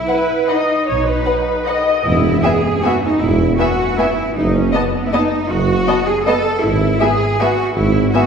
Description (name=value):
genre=classical, orchestral ballroom waltz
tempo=157 BPM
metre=3/4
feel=uneven beats, rubato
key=E major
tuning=A4 = 439 Hz
part: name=muted studio cello section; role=bass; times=0.0-8.3 s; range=B3 to A4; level=-18 LUFS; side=right 1 dB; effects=none
part: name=muted studio violin section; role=melody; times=0.1-8.2 s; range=F#5 to A5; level=-26 LUFS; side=left 4 dB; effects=none
part: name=muted studio violin section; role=second line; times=0.1-8.2 s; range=B4 to E5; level=-23 LUFS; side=left 3 dB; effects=none
part: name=muted studio viola section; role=accompaniment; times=0.1-8.2 s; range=B3 to D#5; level=-20 LUFS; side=equal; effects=none
part: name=muted studio double bass section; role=bass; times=0.9-8.1 s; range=E1 to B1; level=-21 LUFS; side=right 1 dB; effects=none
part: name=mellow tuba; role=bass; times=2.1-8.1 s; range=E1 to G#1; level=-20 LUFS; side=right 2 dB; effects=none
part: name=tam-tam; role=percussion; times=2.1-3.5 s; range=none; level=-27 LUFS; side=equal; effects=none
room=wet scoring stage reverb, RT60 1.6 s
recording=heard from further back in the room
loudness=-14 LUFS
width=side -6 dB against mid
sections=0.0-2.1 A section; 2.1-8.3 B section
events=band accent 2.1-2.4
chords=0.0 B; 2.1 E; 4.4 B7/F#; 6.6 E/G#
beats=0.08 0.49 | 0.87 1.26 1.67 | 2.05 2.44 2.84 | 3.21 3.59 3.98 | 4.36 4.74 5.13 | 5.50 5.88 6.27 | 6.64 7.01 7.41 | 7.77 8.13